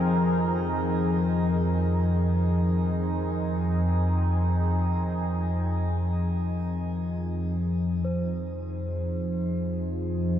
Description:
dark ambient drone; free time; A4 = 440 Hz
deep dark ambient pad; sustained chords; 0.0-10.4 s; F2 to Bb4; -31 LUFS; right 1 dB; chorus, built-in reverb, shimmer reverb
analog drone; drone; 0.0-10.4 s; F2 to F3; -25 LUFS; equal; chorus
bronze singing bowl; texture; 0.0-10.4 s; C5; -41 LUFS; left 4 dB; shimmer reverb
wet huge ambient reverb, RT60 7.6 s; cassette tape; -24 LUFS; side -10 dB against mid
0.0-8.0 A section; 8.0-10.4 B section
fade-out on ambient pad 0.0-8.0; filter sweep on synth drone 0.0-8.0
0.0 Abadd9/F; 8.0 Ab/F

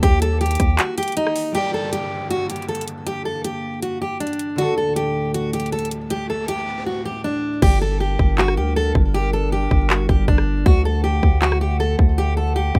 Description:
hip hop, trap; 158 BPM; 4/4; half-time; G harmonic minor; A4 = 440 Hz
fingerpicked steel-string acoustic guitar; melody; 0.0-12.8 s; D4 to A4; -25 LUFS; equal
concert harp; accompaniment; 0.0-7.7 s; D3 to D5; -30 LUFS; equal
warbly tape-like pad; sustained chords; 0.0-12.8 s; D2 to F#5; -33 LUFS; equal; chorus, built-in reverb
distorted 808-style bass; bass; 0.0-0.8, 7.6-12.8 s; G1 to Eb2; -22 LUFS; equal; distortion
trap drum kit; drums; 0.0-12.8 s; crash cymbal, handclaps, hi-hat, kick drum, rim click; -21 LUFS; equal
downlifter and riser; sound effects; 1.5-6.9 s; -41 LUFS; equal
little or no reverb; rough home demo mix; -20 LUFS; mono
0.0-1.5 A section; 1.5-7.6 B section; 7.6-12.8 C section
break 0.8-1.5; riser 5.6-7.6; hi-hats muted 7.6-12.8
0.0 Eb; 1.5 Gm; 4.6 D5; 7.6 Gm; 10.7 D

